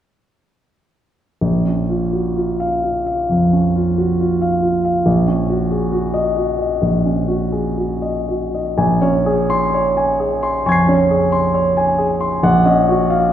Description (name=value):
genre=classical, impressionist solo piano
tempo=65 BPM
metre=4/4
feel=uneven beats, rubato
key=Bb minor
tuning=A4 = 440 Hz
part: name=warm baby grand piano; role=solo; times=1.4-13.3 s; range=Bb1 to C7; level=-14 LUFS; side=equal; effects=none
room=wet recital hall reverb, RT60 1.5 s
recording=heard from further back in the room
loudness=-14 LUFS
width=side -10 dB against mid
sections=1.4-8.8 A section; 8.8-13.3 B section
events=none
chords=1.4 Bbm; 5.1 Ab9sus4/Bb; 8.8 Bbm9; 12.5 Ebm9/Bb